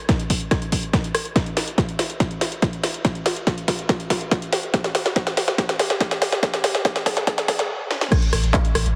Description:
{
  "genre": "driving peak-time techno",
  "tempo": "142 BPM",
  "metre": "4/4",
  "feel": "straight",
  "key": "unclear",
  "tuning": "A4 = 440 Hz",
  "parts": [
    { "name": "electronic kick drum", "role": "drums", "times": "0.1-8.6 s", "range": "none", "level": "-25 LUFS", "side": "equal", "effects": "none" },
    { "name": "techno drum kit", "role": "drums", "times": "0.1-8.9 s", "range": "crash cymbal, handclaps, hi-hat, rim click, snare drum", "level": "-24 LUFS", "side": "equal", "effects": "high-pass filter on hats, high-pass filter on snare, high-pass filter on cymbals, high-pass filter on room" },
    { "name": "warm sub bass", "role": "bass", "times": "8.3-9.0 s", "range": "A1", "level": "-24 LUFS", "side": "equal", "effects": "tube saturation, sidechain pumping, low-pass filter" }
  ],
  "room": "moderate plate reverb, RT60 2.4 s",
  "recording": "heavily compressed radio sound, multiband compression, high-pass filter",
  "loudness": "-22 LUFS",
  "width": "mono",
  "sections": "0.0-8.1 A section",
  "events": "build-up 0.0-8.1; drum fill 0.0-7.7, 7.9; stop 7.7-8.1",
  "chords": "none",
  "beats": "0.09 0.51 0.93 | 1.36 1.78 2.20 2.62 | 3.05 3.47 3.89 4.32 | 4.74 5.16 5.58 6.00 | 6.43 6.85 7.27 7.70 | 8.12 8.54"
}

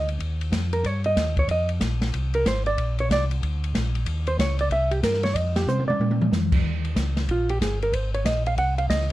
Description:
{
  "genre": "soul jazz organ trio",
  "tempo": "186 BPM",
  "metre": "4/4",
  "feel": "swing 63% on 8ths",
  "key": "Eb mixolydian",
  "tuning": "A4 = 441 Hz",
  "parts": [
    { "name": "hollow-body jazz guitar", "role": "accompaniment", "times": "0.0-9.1 s", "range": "F4 to Gb5", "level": "-25 LUFS", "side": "right 2 dB", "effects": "none" },
    { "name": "mellow tonewheel organ", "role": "bass", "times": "0.0-9.1 s", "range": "G1 to C3", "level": "-25 LUFS", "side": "equal", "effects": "slow rotary speaker" },
    { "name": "open jazz drum kit", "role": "drums", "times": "0.1-9.1 s", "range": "crash cymbal, hi-hat, kick drum, ride cymbal, snare drum, toms", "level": "-27 LUFS", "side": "equal", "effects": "none" }
  ],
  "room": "light reverb",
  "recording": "dark, warm production",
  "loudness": "-21 LUFS",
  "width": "side -16 dB against mid",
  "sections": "0.0-6.6 A section; 6.6-9.1 A section",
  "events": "hollow-body jazz guitar solo 0.0-6.6, 6.6-9.1; drum fill 5.7-6.3",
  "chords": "0.2 Ebadd9; 1.5 Fm; 2.8 Bbadd9; 4.1 Dbsus2; 4.7 C5; 5.4 F5; 6.0 Bb; 6.6 Eb7; 7.9 Abadd9",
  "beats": "| 0.20 0.53 0.85 1.17 | 1.49 1.81 2.14 2.46 | 2.78 3.10 3.43 3.75 | 4.07 4.39 4.71 5.04 | 5.36 5.68 6.00 6.32 | 6.64 6.97 7.29 7.61 | 7.93 8.26 8.58 8.90"
}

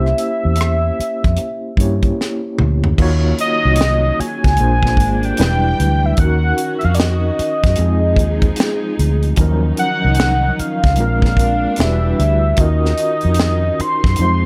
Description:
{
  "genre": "R&B, neo-soul",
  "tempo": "75 BPM",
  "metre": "4/4",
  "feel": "swing 63% on 16ths",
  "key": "Eb dorian",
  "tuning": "A4 = 440 Hz",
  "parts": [
    { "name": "warm velvety synth lead", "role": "melody", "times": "0.0-14.5 s", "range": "D5 to C6", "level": "-22 LUFS", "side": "equal", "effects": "chorus, slapback echo" },
    { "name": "overdriven tine electric piano", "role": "accompaniment", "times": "0.0-14.5 s", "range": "F3 to Db5", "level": "-24 LUFS", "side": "equal", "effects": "medium tremolo" },
    { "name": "vintage muted fingered electric bass", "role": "bass", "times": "0.0-14.4 s", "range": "E1 to G2", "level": "-18 LUFS", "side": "equal", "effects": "none" },
    { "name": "tight funk drum kit", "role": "drums", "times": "0.1-14.4 s", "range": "crash cymbal, hi-hat, kick drum, rim click, snare drum, toms", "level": "-20 LUFS", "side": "equal", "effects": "none" },
    { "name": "warm studio string section", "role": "sustained chords", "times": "3.0-14.5 s", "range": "Eb3 to G5", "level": "-29 LUFS", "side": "equal", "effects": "none" }
  ],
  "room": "light reverb",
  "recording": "none",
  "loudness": "-16 LUFS",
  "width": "mono",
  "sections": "0.0-3.0 A section; 3.0-14.5 B section",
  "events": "drum fill 2.2-3.0",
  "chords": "0.0 C7b9; 3.0 Ebm7; 4.6 Bb9; 5.4 Em7; 6.2 Ebm7; 7.8 Fm7; 9.4 Ebm7; 11.0 Bb9; 11.8 Em7; 12.6 Ebm7",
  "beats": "0.58 1.38 2.18 | 2.98 3.78 4.58 5.38 | 6.18 6.98 7.78 8.58 | 9.38 10.18 10.98 11.78 | 12.58 13.38 14.18"
}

